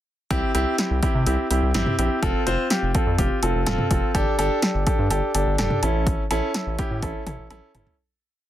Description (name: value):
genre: synth-pop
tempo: 125 BPM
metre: 4/4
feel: straight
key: unclear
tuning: A4 = 439 Hz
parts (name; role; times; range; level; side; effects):
- clear baby grand piano; accompaniment; 0.3-7.9 s; C4 to C5; -23 LUFS; equal; none
- round analog bass; bass; 0.3-7.9 s; E1 to C3; -25 LUFS; equal; none
- punchy analog drum machine; drums; 0.3-8.0 s; hi-hat, kick drum, snare drum, toms; -24 LUFS; equal; overdrive
room: little or no reverb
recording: dense, heavily limited modern master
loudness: -20 LUFS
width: side -12 dB against mid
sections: 0.3-8.0 pre-chorus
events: fade-out 6.1-8.0; drum fill 7.5-8.0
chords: 0.3 C; 2.2 F; 4.1 Gsus2; 5.8 A